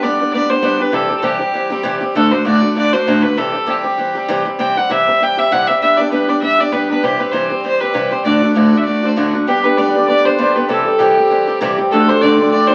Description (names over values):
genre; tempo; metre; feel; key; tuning
celtic folk, Celtic reel; 197 BPM; 4/4; swing 55% on 8ths; unclear; A4 = 441 Hz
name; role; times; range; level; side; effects
bright fiddle; melody; 0.0-12.7 s; G4 to G5; -19 LUFS; equal; none
cimbalom; second line; 0.0-1.8, 9.5-12.7 s; E4 to D5; -18 LUFS; equal; none
picked steel-string acoustic guitar; accompaniment; 0.0-12.7 s; D2 to G4; -18 LUFS; equal; none
room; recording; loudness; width
wet small room ambience, RT60 0.5 s; very old 78 rpm record, vinyl crackle; -15 LUFS; mono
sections
0.0-9.5 A section; 9.5-12.7 A section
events
none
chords
0.0 G; 0.9 C; 2.2 D; 3.4 C; 5.8 G; 7.0 C; 8.3 D; 9.5 G; 10.7 C; 11.9 D